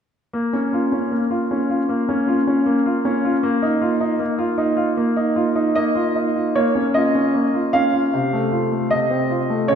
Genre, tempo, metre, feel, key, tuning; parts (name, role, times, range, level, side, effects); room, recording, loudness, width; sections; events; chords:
classical-period piano sonatina; 77 BPM; 4/4; rubato; Bb minor; A4 = 440 Hz
clear concert grand piano; solo; 0.3-9.8 s; C3 to F5; -17 LUFS; equal
wet scoring stage reverb, RT60 2.1 s; recorded in a church or concert hall; -17 LUFS; side -8 dB against mid
0.3-6.6 A section; 6.6-9.8 B section
0.3 Bbm; 3.4 Bbsus4; 6.6 Bbm; 8.1 F7/C